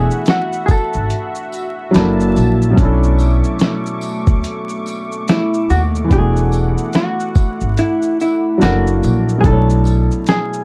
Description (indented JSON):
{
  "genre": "lo-fi hip hop",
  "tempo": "72 BPM",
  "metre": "4/4",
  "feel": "swing 60% on 16ths",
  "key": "B dorian",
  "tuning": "A4 = 439 Hz",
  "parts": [
    { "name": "vintage hollow-body jazz guitar", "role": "melody", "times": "0.0-10.6 s", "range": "E4 to A4", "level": "-21 LUFS", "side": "equal", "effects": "low-pass filter, plate reverb" },
    { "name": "felt-muted upright piano", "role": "accompaniment", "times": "0.0-10.6 s", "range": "B2 to C#5", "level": "-22 LUFS", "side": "equal", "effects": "cassette tape, low-pass filter, plate reverb" },
    { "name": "warm analog pad", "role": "sustained chords", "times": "0.0-9.4 s", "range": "A3 to D6", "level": "-28 LUFS", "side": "equal", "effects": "chorus, low-pass filter, plate reverb" },
    { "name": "upright bass", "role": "bass", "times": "0.0-10.1 s", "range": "E1 to D#2", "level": "-18 LUFS", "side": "equal", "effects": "none" },
    { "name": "dusty soul sampler-style drum kit", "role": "drums", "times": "0.1-10.6 s", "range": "hi-hat, kick drum, shaker, snare drum", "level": "-17 LUFS", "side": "equal", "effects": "overdrive" },
    { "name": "tambourine", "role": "percussion", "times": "0.7-10.1 s", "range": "none", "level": "-43 LUFS", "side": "equal", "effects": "none" }
  ],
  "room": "light reverb",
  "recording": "dark, warm production, vinyl crackle",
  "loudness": "-15 LUFS",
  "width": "mono",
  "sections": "0.0-10.6 A section",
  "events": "none",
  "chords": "0.0 E9sus4; 1.9 F#7alt; 2.8 Bm11; 6.1 E9sus4; 8.6 F#7alt; 9.4 Bm11"
}